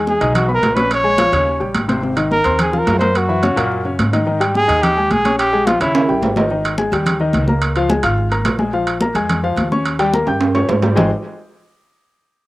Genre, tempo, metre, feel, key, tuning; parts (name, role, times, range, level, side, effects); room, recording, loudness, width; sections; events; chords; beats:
Afro-Cuban jazz; 215 BPM; 4/4; straight; Ab major; A4 = 440 Hz
warm concert grand piano; accompaniment; 0.0-11.1 s; Bb2 to G6; -19 LUFS; left 2 dB
upright bass; bass; 0.0-11.1 s; Ab1 to Ab2; -22 LUFS; equal
mellow trumpet; melody; 0.1-6.3 s; Fb4 to Db5; -16 LUFS; equal
congas; percussion; 0.1-11.0 s; -22 LUFS; left 1 dB
timbales; percussion; 0.2-11.0 s; -21 LUFS; right 4 dB; slapback echo
little or no reverb; recorded outdoors, with no room sound; -14 LUFS; side -18 dB against mid
0.0-6.5 A section; 6.5-11.0 B section; 11.0-12.1 C section
drum fill 5.9-6.5, 10.3-11.0
0.0 Emaj7; 0.9 Bbm7; 1.5 Eb7; 2.0 Ab69; 3.1 Gb9; 4.3 Ab5; 5.4 Bbm7; 5.9 A7#11; 6.5 Ab5; 7.6 Db6; 8.7 Bbm7; 9.9 Eb7; 11.0 Abmaj7
0.07 0.35 0.63 | 0.91 1.19 1.47 1.75 | 2.03 2.31 2.59 2.87 | 3.15 3.43 3.71 3.99 | 4.27 4.55 4.83 5.11 | 5.38 5.66 5.94 6.22 | 6.50 6.78 7.06 7.34 | 7.62 7.90 8.18 8.46 | 8.74 9.02 9.29 9.57 | 9.85 10.13 10.41 10.69 | 10.97